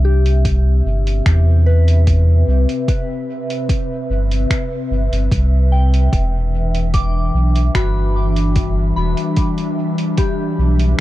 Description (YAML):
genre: ambient dub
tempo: 74 BPM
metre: 4/4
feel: straight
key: unclear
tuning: A4 = 439 Hz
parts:
  - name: airy breathy pad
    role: sustained chords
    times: 0.0-11.0 s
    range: C3 to E5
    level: -22 LUFS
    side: left 1 dB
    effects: chorus
  - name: soft synth bell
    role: arpeggios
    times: 0.0-11.0 s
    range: F#4 to D6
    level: -27 LUFS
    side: left 4 dB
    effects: chorus, dub echo
  - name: warm sub bass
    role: bass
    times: 0.0-10.9 s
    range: E1 to E2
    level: -14 LUFS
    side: equal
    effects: none
  - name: lo-fi sampler-style drum kit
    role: drums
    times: 0.3-11.0 s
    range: finger snaps, hi-hat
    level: -27 LUFS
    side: right 1 dB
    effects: none
  - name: electronic kick drum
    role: drums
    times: 0.4-10.4 s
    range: none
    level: -18 LUFS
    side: equal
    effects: overdrive
room: little or no reverb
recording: dark, warm production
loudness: -14 LUFS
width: side -15 dB against mid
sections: 0.0-11.0 A section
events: none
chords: 0.0 Cmaj7; 6.1 Em7